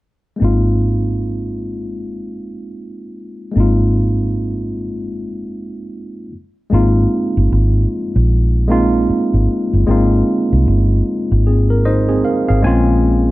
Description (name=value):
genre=R&B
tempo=76 BPM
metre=4/4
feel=swing 61% on 16ths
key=Ab major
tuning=A4 = 439 Hz
part: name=tine electric piano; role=accompaniment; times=0.4-13.3 s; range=Ab3 to Ab5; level=-17 LUFS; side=equal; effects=auto-pan
part: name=vintage muted fingered electric bass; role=bass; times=0.4-13.3 s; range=G1 to C2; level=-14 LUFS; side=equal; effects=none
room=moderate studio ambience, RT60 0.5 s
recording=none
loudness=-13 LUFS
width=side -18 dB against mid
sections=0.4-6.7 A section; 6.7-13.3 B section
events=tine electric piano fill 11.5-13.0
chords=0.4 Ab6; 6.3 N.C.; 6.7 Ab6; 12.6 Bbm9